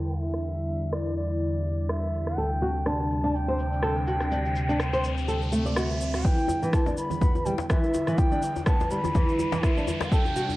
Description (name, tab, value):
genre	afro house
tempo	124 BPM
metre	4/4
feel	swing 56% on 16ths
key	unclear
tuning	A4 = 440 Hz
part	bright bansuri	melody	0.0-10.6 s	D5 to B5	-32 LUFS	equal	cassette tape, tape echo
part	warm analog pad	sustained chords	0.0-10.6 s	C3 to E4	-33 LUFS	equal	wide subtle chorus, sidechain pumping, cassette tape
part	dark detuned saw bass	bass	0.0-10.6 s	B1 to G2	-31 LUFS	equal	sidechain pumping, high-pass filter
part	electronic shaker and rim click	drums	0.1-10.6 s	none	-35 LUFS	equal	high-pass filter on hats, cassette tape, high-pass filter on perc, high-pass filter on snare, high-pass filter on toms, high-pass filter on cymbals, high-pass filter on room
part	nylon-string guitar	arpeggios	2.4-10.4 s	E3 to D5	-29 LUFS	equal	sidechain pumping, low-pass filter, cassette tape
part	riser	sound effects	3.2-10.6 s	none	-39 LUFS	equal	none
part	electronic kick drum	drums	6.2-10.2 s	none	-23 LUFS	equal	cassette tape
part	djembe	percussion	6.2-10.6 s	none	-34 LUFS	left 4 dB	none
part	congas	percussion	6.5-10.5 s	none	-36 LUFS	right 7 dB	none
room	moderate spring reverb, RT60 1.9 s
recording	home recording on cassette, low-pass filter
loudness	-23 LUFS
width	side -17 dB against mid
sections	0.0-6.2 A section; 6.2-10.6 B section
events	filter sweep on analog synth pad 0.0-6.2, 6.2-10.6; filter sweep 0.0-6.2; riser 3.2-6.2, 6.2-10.6; build-up 6.2-10.6; filter sweep on nylon-string guitar 6.2-10.6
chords	0.0 Em7; 2.4 D7sus4; 6.2 Em7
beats	| 0.44 0.93 1.41 1.90 | 2.38 2.86 3.35 3.83 | 4.31 4.80 5.28 5.77 | 6.25 6.73 7.22 7.70 | 8.19 8.67 9.15 9.64 | 10.12